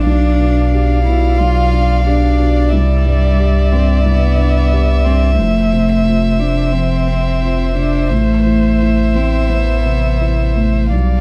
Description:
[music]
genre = neoclassical piano and strings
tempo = 89 BPM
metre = 4/4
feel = rubato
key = unclear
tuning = A4 = 440 Hz
[part]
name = rich violin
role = melody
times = 0.0-11.2 s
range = E5 to F5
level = -24 LUFS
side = equal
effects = none
[part]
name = warm cello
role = second line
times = 0.0-11.2 s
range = G3 to F4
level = -20 LUFS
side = equal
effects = none
[part]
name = felt-muted upright piano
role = accompaniment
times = 0.0-11.2 s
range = A1 to G4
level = -23 LUFS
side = equal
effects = none
[part]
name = rich viola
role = accompaniment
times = 0.0-11.2 s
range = C5 to D5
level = -28 LUFS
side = equal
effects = none
[part]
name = pure sine sub bass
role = bass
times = 0.0-11.2 s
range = F1 to C2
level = -17 LUFS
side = equal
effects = none
[sound]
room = little or no reverb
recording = dark, warm production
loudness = -14 LUFS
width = mono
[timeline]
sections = 0.0-11.2 A section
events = none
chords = 0.1 G7/B; 2.7 Cadd9; 5.4 Fmaj7; 8.1 Am

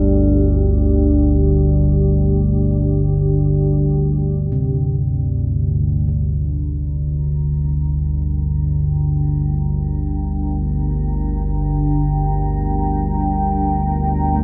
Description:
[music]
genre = dark ambient drone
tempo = free time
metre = none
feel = none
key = G minor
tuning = A4 = 439 Hz
[part]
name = deep dark ambient pad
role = sustained chords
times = 0.0-14.4 s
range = D4 to Bb5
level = -24 LUFS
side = equal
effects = chorus, built-in reverb
[part]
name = analog drone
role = drone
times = 0.0-14.4 s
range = G1 to D2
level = -19 LUFS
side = equal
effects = chorus
[part]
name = quartz singing bowl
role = texture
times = 0.0-4.5 s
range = D5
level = -37 LUFS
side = equal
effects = none
[part]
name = gamelan-type bossed gongs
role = arpeggios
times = 4.5-14.4 s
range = C3 to A3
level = -28 LUFS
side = equal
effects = none
[sound]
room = light reverb, studio reverb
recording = echo-heavy mix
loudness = -18 LUFS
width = mono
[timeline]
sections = 0.0-4.5 A section; 4.5-14.4 B section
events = none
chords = 0.0 G5; 4.5 Gm

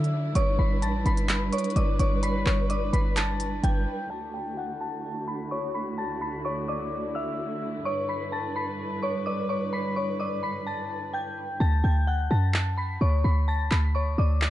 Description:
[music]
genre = hip hop, trap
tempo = 128 BPM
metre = 4/4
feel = half-time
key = D major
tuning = A4 = 442 Hz
[part]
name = dark detuned synth bell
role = melody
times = 0.0-14.5 s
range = C#5 to B6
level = -30 LUFS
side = left 2 dB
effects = chorus, low-pass filter, ping-pong delay
[part]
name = warm studio string section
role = sustained chords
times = 0.0-11.6 s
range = D2 to B4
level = -32 LUFS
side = right 2 dB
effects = low-pass filter
[part]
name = short 808-style bass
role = bass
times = 0.0-3.9, 11.6-14.5 s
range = G1 to D3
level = -24 LUFS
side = equal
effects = none
[part]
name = trap drum kit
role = drums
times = 0.0-3.7, 12.5-14.5 s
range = handclaps, hi-hat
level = -29 LUFS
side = equal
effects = none
[sound]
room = little or no reverb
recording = dark, warm production, nothing above 10.5 kHz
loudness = -24 LUFS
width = side -14 dB against mid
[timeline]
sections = 0.0-4.1 A section; 4.1-11.6 B section; 11.6-14.5 C section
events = filter sweep 4.1-11.6; hi-hats muted 11.6-14.5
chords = 0.4 G6; 4.1 Dadd9; 7.9 G6; 11.6 D

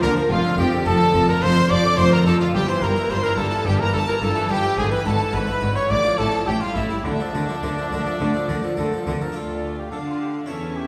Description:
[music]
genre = classical, baroque-style concerto movement with solo episodes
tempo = 107 BPM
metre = 4/4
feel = straight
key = D minor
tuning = A4 = 440 Hz
[part]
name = clear trumpet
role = melody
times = 0.0-10.9 s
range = D4 to D5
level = -28 LUFS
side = equal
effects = none
[part]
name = rich chamber violin section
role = melody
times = 0.0-10.9 s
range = D5 to D6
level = -30 LUFS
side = equal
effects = none
[part]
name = warm chamber violin section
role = second line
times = 0.0-10.9 s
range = D4 to F5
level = -28 LUFS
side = equal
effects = none
[part]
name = harpsichord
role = accompaniment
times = 0.0-10.9 s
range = D2 to Bb4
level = -32 LUFS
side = equal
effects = none
[part]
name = rich studio viola section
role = accompaniment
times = 0.0-10.9 s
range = D3 to F4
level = -30 LUFS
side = equal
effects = none
[part]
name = rich chamber double bass section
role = bass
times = 0.0-9.1 s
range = F1 to D2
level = -27 LUFS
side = equal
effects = none
[part]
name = rich symphonic cello section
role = bass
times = 0.0-10.9 s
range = D2 to D3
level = -29 LUFS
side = equal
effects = none
[sound]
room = wet recital hall reverb, RT60 1.5 s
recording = heard from further back in the room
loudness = -21 LUFS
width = mono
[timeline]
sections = 0.0-9.4 A section; 9.4-10.9 B section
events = none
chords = 0.3 Dm/F; 2.5 Gm13; 4.8 E7/G#; 5.9 Dm/A; 6.5 A5; 7.0 Dm

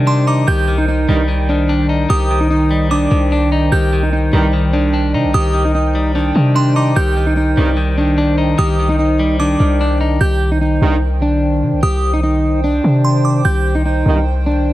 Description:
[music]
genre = hip hop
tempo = 148 BPM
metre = 4/4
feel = half-time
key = C minor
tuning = A4 = 440 Hz
[part]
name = electric guitar at the edge of break-up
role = melody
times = 0.0-14.7 s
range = D4 to G4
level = -18 LUFS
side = equal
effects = none
[part]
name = clean electric guitar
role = accompaniment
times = 0.0-10.2 s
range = Eb3 to Eb4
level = -20 LUFS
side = left 4 dB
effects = spring reverb
[part]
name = hollow soft pad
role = sustained chords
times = 0.0-14.7 s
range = Eb3 to G5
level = -23 LUFS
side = equal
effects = chorus
[part]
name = warm 808-style bass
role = bass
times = 0.0-14.7 s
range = C2 to C3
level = -15 LUFS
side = equal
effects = none
[part]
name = delicate synth tine bell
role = second line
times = 0.1-14.2 s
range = C6 to G6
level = -23 LUFS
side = right 3 dB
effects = chorus, digital delay
[part]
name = warm brass ensemble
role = stabs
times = 1.1-1.2, 4.3-4.5, 7.6-7.7, 10.8-10.9, 14.1-14.2 s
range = C2 to Eb3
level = -22 LUFS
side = right 4 dB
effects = none
[sound]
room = digital ambience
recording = vinyl crackle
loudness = -12 LUFS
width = side -15 dB against mid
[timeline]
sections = 0.0-10.2 A section; 10.2-14.7 A section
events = none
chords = 0.0 Cmadd9

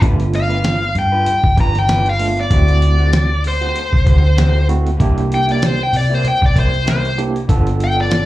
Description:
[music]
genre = straight-eighth soul blues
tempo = 96 BPM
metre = 4/4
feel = swing 56% on 16ths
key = G mixolydian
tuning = A4 = 436 Hz
[part]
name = overdriven tine electric piano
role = accompaniment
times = 0.0-8.3 s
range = A3 to A4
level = -21 LUFS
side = right 5 dB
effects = fast tremolo
[part]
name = electric guitar through a small old amp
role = stabs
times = 0.0-8.2 s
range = G2 to B4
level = -28 LUFS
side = left 3 dB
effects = spring reverb, slapback echo, tape echo
[part]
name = vintage muted fingered electric bass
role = bass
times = 0.0-8.3 s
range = G1 to C3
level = -16 LUFS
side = equal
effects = none
[part]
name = dusty soul sampler-style drum kit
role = drums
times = 0.0-8.3 s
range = hi-hat, kick drum, snare drum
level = -17 LUFS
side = equal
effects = none
[part]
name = smooth overdriven lead guitar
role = melody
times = 0.4-8.3 s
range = C5 to Bb5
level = -18 LUFS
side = left 1 dB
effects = slapback echo
[sound]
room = little or no reverb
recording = live gig heard through the venue's PA, club reverb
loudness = -13 LUFS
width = side -16 dB against mid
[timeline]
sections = 0.0-8.3 A section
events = lead electric guitar solo 0.0-8.3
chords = 0.0 G7; 2.5 D7; 5.0 C7; 7.5 G7

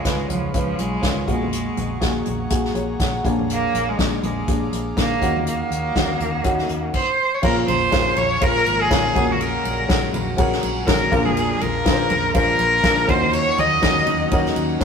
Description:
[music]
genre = piano-driven pop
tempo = 122 BPM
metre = 4/4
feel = swing 56% on 16ths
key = Bb minor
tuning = A4 = 441 Hz
[part]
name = bright cello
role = melody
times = 0.0-14.3 s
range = F3 to Eb5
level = -21 LUFS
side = right 1 dB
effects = tape echo
[part]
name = dark upright piano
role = accompaniment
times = 0.0-14.8 s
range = Ab2 to Gb5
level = -23 LUFS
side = left 2 dB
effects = none
[part]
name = airy breathy pad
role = sustained chords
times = 0.2-14.8 s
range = Db3 to Eb6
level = -33 LUFS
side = equal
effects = chorus
[part]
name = unplugged drum kit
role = drums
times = 0.0-14.8 s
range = crash cymbal, hi-hat, kick drum, ride cymbal, snare drum, toms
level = -23 LUFS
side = equal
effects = none
[part]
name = vintage muted fingered electric bass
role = bass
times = 0.1-14.8 s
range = Ab1 to Eb2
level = -28 LUFS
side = equal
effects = none
[sound]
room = wet stone room reverb, RT60 1.0 s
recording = rough rehearsal-room recording, tube saturation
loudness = -17 LUFS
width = side -6 dB against mid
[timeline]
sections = 0.0-7.4 A section; 7.4-14.8 B section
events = none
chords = 0.0 Db7; 1.3 Gbadd9/Bb; 3.2 Bb7; 5.2 Ebm7; 7.4 Bbm7; 9.2 Gbadd9/Bb; 11.1 Bb7; 13.1 Ebm7

